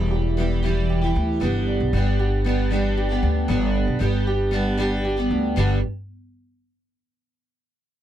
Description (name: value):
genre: acoustic pop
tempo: 116 BPM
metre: 4/4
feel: straight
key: G major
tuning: A4 = 441 Hz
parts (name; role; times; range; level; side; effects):
- picked steel-string acoustic guitar; accompaniment; 0.0-5.8 s; G2 to G4; -24 LUFS; equal; double-tracked left and right
- nylon-string guitar; arpeggios; 0.0-5.8 s; G3 to G4; -30 LUFS; right 5 dB; none
- upright bass; bass; 0.0-5.8 s; E1 to D2; -22 LUFS; equal; none
room: little or no reverb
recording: dark, warm production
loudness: -20 LUFS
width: side -11 dB against mid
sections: 0.0-5.6 A section; 5.6-7.6 B section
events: none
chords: 0.0 Em; 1.4 G